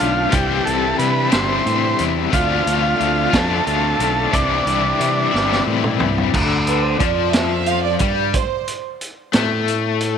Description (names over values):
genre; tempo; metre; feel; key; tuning
psychedelic rock; 60 BPM (dotted quarters); 6/8; straight; D minor; A4 = 440 Hz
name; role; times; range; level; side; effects
combo organ; melody; 0.0-5.6 s; D4 to C5; -20 LUFS; right 1 dB; tape echo
bright chamber string section; sustained chords; 0.0-8.7 s; C4 to F5; -25 LUFS; right 13 dB; none
cranked stack guitar; riff; 0.0-10.2 s; C3 to F4; -20 LUFS; left 12 dB; overdrive, tremolo
fuzz fingered electric bass; bass; 0.0-10.2 s; G1 to C3; -23 LUFS; right 2 dB; overdrive
vintage drum kit; drums; 0.0-10.2 s; crash cymbal, hi-hat, kick drum, snare drum, toms; -21 LUFS; right 1 dB; none
room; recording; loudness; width
light reverb, small room ambience; 1960s-style stereo with parts hard left and right; -16 LUFS; side -7 dB against mid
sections
0.0-6.3 A section; 6.3-10.2 B section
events
drum fill 5.3-6.3; string section solo 6.3-10.2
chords
0.3 Cadd9; 2.3 Dm7; 4.3 Cadd9; 6.3 Dm7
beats
| 0.34 1.34 | 2.34 3.34 | 4.34 5.33 | 6.33 7.33 | 8.33 9.33